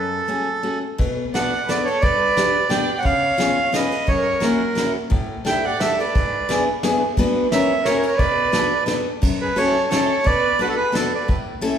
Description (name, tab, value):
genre	musette waltz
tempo	175 BPM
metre	3/4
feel	swing 53% on 8ths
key	B minor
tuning	A4 = 440 Hz
part	accordion	melody	0.0-11.3 s	A4 to G5	-21 LUFS	right 2 dB	none
part	picked steel-string acoustic guitar	accompaniment	0.0-11.8 s	F#2 to B4	-23 LUFS	left 2 dB	none
part	soft brush drum kit	drums	1.0-11.7 s	crash cymbal, kick drum, ride cymbal, snare drum	-24 LUFS	equal	none
part	warm violin	second line	1.3-11.3 s	F#4 to E5	-26 LUFS	right 4 dB	none
room	wet recital hall reverb, RT60 1.6 s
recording	recorded in a church or concert hall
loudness	-17 LUFS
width	side -8 dB against mid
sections	1.0-9.2 A section; 9.2-11.8 B section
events	none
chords	0.0 F#madd9; 1.0 Bm7; 2.0 Gmaj7; 3.1 C#7; 4.1 F#7; 5.1 A7sus4; 6.2 E7/G#; 7.2 Bm; 7.5 F#7; 8.2 Bm7; 9.2 F#m7; 10.3 Bm7; 11.3 A